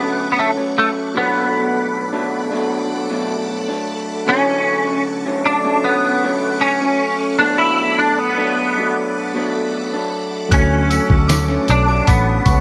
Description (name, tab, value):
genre	indie pop, bedroom pop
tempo	77 BPM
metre	4/4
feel	straight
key	D major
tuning	A4 = 440 Hz
part	semi-hollow electric guitar	melody	0.0-12.6 s	A3 to E4	-20 LUFS	equal	ensemble chorus, analog delay
part	electric guitar through a small old amp	accompaniment	0.0-12.6 s	B2 to D4	-23 LUFS	equal	analog chorus, warbly pitch drift
part	phased string machine	sustained chords	0.0-12.6 s	A4 to D6	-31 LUFS	equal	ensemble chorus, phaser
part	glassy synth bell	second line	10.5-12.6 s	C#6 to F#6	-29 LUFS	equal	subtle chorus, analog delay
part	barky reed electric piano	accompaniment	10.5-12.6 s	F#3 to A4	-28 LUFS	equal	overdrive, fast tremolo, cassette tape
part	vintage muted fingered electric bass	bass	10.5-12.6 s	A1 to D2	-19 LUFS	equal	none
part	lo-fi sampler-style drum kit	drums	10.5-12.6 s	hi-hat, kick drum, snare drum	-18 LUFS	equal	overdrive
part	tambourine	percussion	10.5-12.6 s	none	-34 LUFS	equal	none
room	light reverb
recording	none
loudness	-17 LUFS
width	mono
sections	0.0-12.6 A section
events	none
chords	0.0 Dmaj7; 1.2 Bm7; 4.3 Dmaj7; 7.4 Bm7; 10.5 Dmaj7